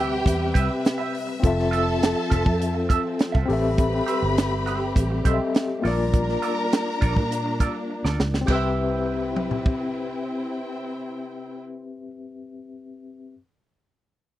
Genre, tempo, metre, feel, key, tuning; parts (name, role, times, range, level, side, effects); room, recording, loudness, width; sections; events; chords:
lush 1970s-style soul; 102 BPM; 4/4; straight; C major; A4 = 440 Hz
warm studio string section; second line; 0.0-11.6 s; C4 to B5; -30 LUFS; right 1 dB
overdriven tine electric piano; accompaniment; 0.0-13.4 s; Bb3 to E5; -27 LUFS; left 4 dB; fast tremolo
warm symphonic string section; sustained chords; 0.0-11.6 s; C3 to E5; -33 LUFS; right 1 dB
semi-hollow electric guitar; riff; 0.0-12.1 s; F4 to E5; -30 LUFS; right 8 dB; wah
vintage muted fingered electric bass; bass; 0.0-12.0 s; F1 to Bb2; -26 LUFS; right 1 dB
compact cocktail drum kit; drums; 0.3-9.8 s; crash cymbal, hi-hat, kick drum, snare drum, toms; -22 LUFS; right 1 dB
little or no reverb; dry, close 1970s-style studio recording; -21 LUFS; side -14 dB against mid
0.0-8.5 A section; 8.5-10.8 B section
drum fill 7.9-8.5
0.0 Cmaj7; 1.4 Fmaj7; 3.5 Am7; 5.8 Bbmaj7; 8.5 Cmaj7